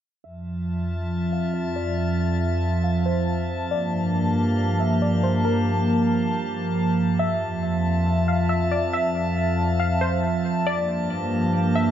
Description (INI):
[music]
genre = hip hop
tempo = 138 BPM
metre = 4/4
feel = half-time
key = F major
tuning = A4 = 440 Hz
[part]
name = glassy wavetable pluck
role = melody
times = 0.2-11.9 s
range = Bb4 to F5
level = -29 LUFS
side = left 1 dB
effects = chorus, low-pass filter, tape echo
[part]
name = hollow soft pad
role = sustained chords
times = 0.4-11.9 s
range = F2 to A5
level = -22 LUFS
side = right 1 dB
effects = chorus, low-pass filter
[part]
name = drifting glass-harmonics texture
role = texture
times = 0.7-11.9 s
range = Bb3 to A5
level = -30 LUFS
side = left 2 dB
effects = chorus, built-in reverb
[sound]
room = moderate spring reverb, RT60 1.6 s, digital ambience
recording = echo-heavy mix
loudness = -21 LUFS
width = side -10 dB against mid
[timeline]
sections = 0.2-11.9 A section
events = filter sweep 0.2-11.9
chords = 0.2 Fmaj7; 3.7 Gm9; 7.2 Fmaj7; 10.7 Gm9